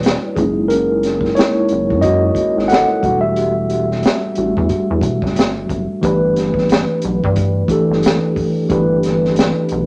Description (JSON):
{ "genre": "R&B, neo-soul", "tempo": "90 BPM", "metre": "4/4", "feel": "swing 58% on 16ths", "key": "unclear", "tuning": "A4 = 441 Hz", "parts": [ { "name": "mellow tine electric piano", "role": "accompaniment", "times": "0.0-9.9 s", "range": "E3 to F#5", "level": "-18 LUFS", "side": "equal", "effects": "none" }, { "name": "rubbery square bass", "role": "bass", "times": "0.0-9.9 s", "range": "E1 to G2", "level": "-24 LUFS", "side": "equal", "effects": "none" }, { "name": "crunchy breakbeat drum kit", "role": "drums", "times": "0.0-9.9 s", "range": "hi-hat, kick drum, snare drum", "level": "-22 LUFS", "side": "equal", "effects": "none" } ], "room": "moderate studio reverb, RT60 0.6 s", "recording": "nothing above 10.9 kHz", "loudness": "-16 LUFS", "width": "mono", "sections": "0.0-6.0 A section; 6.0-9.9 B section", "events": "tine electric piano solo 0.0-6.0", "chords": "0.4 F#13; 3.0 Em11; 6.0 Gadd9", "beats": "0.03 | 0.70 1.36 2.03 2.70 | 3.36 4.03 4.70 5.36 | 6.03 6.70 7.36 8.03 | 8.70 9.36" }